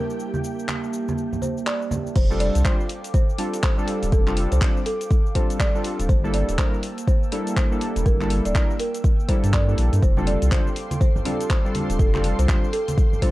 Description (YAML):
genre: deep house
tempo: 122 BPM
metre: 4/4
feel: swing 61% on 16ths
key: unclear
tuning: A4 = 440 Hz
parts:
  - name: folk marimba with soft mallets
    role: melody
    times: 0.0-13.3 s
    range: A4 to D5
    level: -30 LUFS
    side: equal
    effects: none
  - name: warbly tape-like pad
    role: sustained chords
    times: 0.0-13.3 s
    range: Bb3 to E6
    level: -33 LUFS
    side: right 3 dB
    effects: chorus, built-in reverb, sidechain pumping
  - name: warm analog keys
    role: stabs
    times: 0.0-13.3 s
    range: G3 to C5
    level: -28 LUFS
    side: left 1 dB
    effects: chorus
  - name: analog string pad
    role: texture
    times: 0.0-2.2, 10.0-13.3 s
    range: G4 to C6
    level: -41 LUFS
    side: left 1 dB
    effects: ensemble chorus, sidechain pumping
  - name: deep house drum kit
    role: drums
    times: 0.1-13.3 s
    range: cabasa, crash cymbal, handclaps, hi-hat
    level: -32 LUFS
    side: equal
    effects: overdrive, vintage 12-bit sampler grit
  - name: congas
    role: percussion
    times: 0.3-2.0, 10.2-13.3 s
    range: none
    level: -30 LUFS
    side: right 1 dB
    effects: none
  - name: warm sub bass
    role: bass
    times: 2.2-12.5 s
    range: D1 to G2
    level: -22 LUFS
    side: equal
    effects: sidechain pumping
  - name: electronic kick drum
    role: drums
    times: 2.2-13.3 s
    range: none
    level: -20 LUFS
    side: equal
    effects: overdrive, vintage 12-bit sampler grit
room: little or no reverb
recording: none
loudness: -19 LUFS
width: side -17 dB against mid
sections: 0.0-2.2 A section; 2.2-13.3 B section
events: filter sweep on ambient pad 0.0-2.2; drop 2.2-13.3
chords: 0.0 Gm69; 2.2 F69; 6.1 Gm69; 10.0 F69